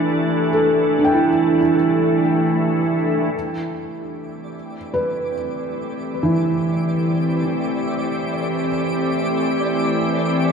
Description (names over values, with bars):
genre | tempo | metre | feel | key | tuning
ambient | free time | none | none | C major | A4 = 440 Hz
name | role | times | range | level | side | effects
soft additive organ-like pad | sustained chords | 0.0-10.5 s | E3 to G4 | -21 LUFS | equal | ensemble chorus, built-in reverb
felt-muted upright piano | arpeggios | 0.0-10.5 s | E3 to G5 | -21 LUFS | right 1 dB | ping-pong delay
twinkling granular texture | texture | 4.5-10.5 s | D5 to D6 | -30 LUFS | right 1 dB | built-in reverb
room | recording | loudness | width
wet concert hall reverb, RT60 2.3 s | dark, warm production | -17 LUFS | side -6 dB against mid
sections
0.0-3.3 A section; 3.3-10.5 B section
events
fade-in on ambient pad 3.3-10.5; fade-in on synth texture 3.3-10.5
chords
0.0 C6 (rootless); 3.3 C6